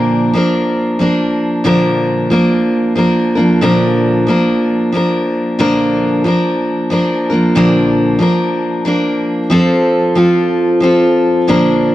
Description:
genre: country.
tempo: 92 BPM.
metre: 3/4.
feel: swing 61% on 8ths.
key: Bb major.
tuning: A4 = 440 Hz.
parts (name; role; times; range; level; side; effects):
picked steel-string acoustic guitar; solo; 0.0-11.9 s; Bb2 to Bb4; -11 LUFS; equal; none.
room: moderate plate reverb, RT60 3.1 s.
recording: dark, warm production.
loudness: -11 LUFS.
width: side -14 dB against mid.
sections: 0.0-11.5 A section.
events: none.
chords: 0.0 Bb; 9.5 F.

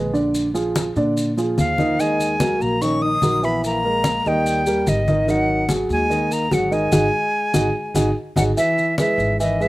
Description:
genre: Afro-Cuban jazz.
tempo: 146 BPM.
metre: 4/4.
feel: straight.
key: unclear.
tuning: A4 = 440 Hz.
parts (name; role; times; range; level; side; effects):
dark upright piano; accompaniment; 0.0-9.7 s; D3 to E5; -21 LUFS; right 1 dB; none.
upright bass; bass; 0.0-9.7 s; G#1 to A#2; -26 LUFS; equal; none.
congas; percussion; 0.1-9.7 s; none; -24 LUFS; left 1 dB; none.
maracas; percussion; 0.1-9.7 s; none; -34 LUFS; left 2 dB; none.
breathy bright jazz flute; melody; 1.6-9.7 s; D#5 to D#6; -22 LUFS; equal; none.
breathy trombone; second line; 1.6-9.7 s; D#3 to D#4; -28 LUFS; left 3 dB; slapback echo.
room: little or no reverb.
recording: recorded outdoors, with no room sound.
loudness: -17 LUFS.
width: side -18 dB against mid.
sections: 0.0-8.6 A section; 8.6-9.7 B section.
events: band accent 6.9-8.6.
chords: 0.3 A#7; 2.0 D#m; 3.6 Emaj7#11/A#; 4.5 D#; 5.3 G#5; 8.6 C#m7 (rootless).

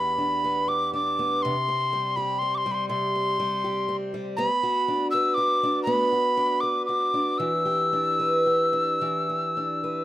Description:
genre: celtic folk, Celtic slow air.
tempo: 36-41 BPM (dotted quarters).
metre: 6/8.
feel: rubato.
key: E minor.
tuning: A4 = 439 Hz.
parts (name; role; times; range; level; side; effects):
breathy tin whistle; melody; 0.0-10.0 s; B5 to E6; -24 LUFS; equal; none.
picked steel-string acoustic guitar; accompaniment; 0.0-10.0 s; E2 to B4; -27 LUFS; right 1 dB; none.
room: small room reverb.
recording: rough home demo mix.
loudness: -22 LUFS.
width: side -14 dB against mid.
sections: 0.0-10.0 A section.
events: none.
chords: 0.0 Em7; 1.4 C5; 4.4 Bm; 7.4 Em7.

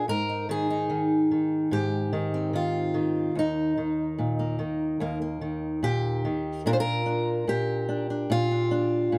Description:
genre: folk, solo fingerstyle acoustic guitar.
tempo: 73 BPM.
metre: 4/4.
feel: straight.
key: Eb major.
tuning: A4 = 440 Hz.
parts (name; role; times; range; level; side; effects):
fingerpicked steel-string acoustic guitar; solo; 0.0-9.2 s; Eb2 to C5; -27 LUFS; equal; none.
room: light reverb.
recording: close, detailed microphones.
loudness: -27 LUFS.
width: mono.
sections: 0.0-6.7 A section; 6.7-9.2 B section.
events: none.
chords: 0.1 Ab; 3.4 Eb; 6.7 Bb.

